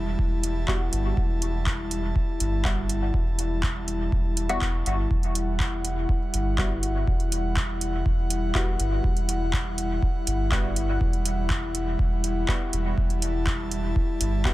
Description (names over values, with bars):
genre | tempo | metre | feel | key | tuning
dub techno | 122 BPM | 4/4 | straight | E minor | A4 = 441 Hz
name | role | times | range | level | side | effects
airy breathy pad | sustained chords | 0.0-14.5 s | G3 to A5 | -30 LUFS | left 1 dB | chorus, sidechain pumping
filtered dub chord stab | stabs | 0.0-14.5 s | G3 to F#4 | -33 LUFS | left 1 dB | chorus, phaser, dub echo
soft dub sub bass | bass | 0.0-14.5 s | E1 to G1 | -28 LUFS | equal | tube saturation, sidechain pumping
electronic kick drum | drums | 0.2-14.5 s | none | -27 LUFS | equal | overdrive
booming analog drum machine | drums | 0.4-14.5 s | handclaps, hi-hat | -32 LUFS | right 1 dB | overdrive, dub echo
room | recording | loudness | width
little or no reverb | none | -23 LUFS | side -16 dB against mid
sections
0.0-5.1 A section; 5.1-14.5 A section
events
none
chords
0.0 Emadd9